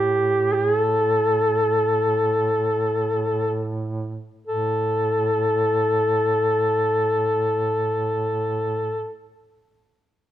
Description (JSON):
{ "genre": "caucasian folk, Caucasian lament", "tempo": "free time", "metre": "none", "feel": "none", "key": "unclear", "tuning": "A4 = 439 Hz", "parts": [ { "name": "warm duduk", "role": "melody", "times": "0.0-9.1 s", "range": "G4 to A4", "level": "-20 LUFS", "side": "left 1 dB", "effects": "none" }, { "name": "mellow duduk", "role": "drone", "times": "0.0-9.1 s", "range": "A2", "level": "-28 LUFS", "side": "right 2 dB", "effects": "none" } ], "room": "light reverb", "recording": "close, detailed microphones", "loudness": "-19 LUFS", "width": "side -12 dB against mid", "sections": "0.0-4.5 A section; 4.5-9.4 B section", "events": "slowing down 0.0-4.5", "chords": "none" }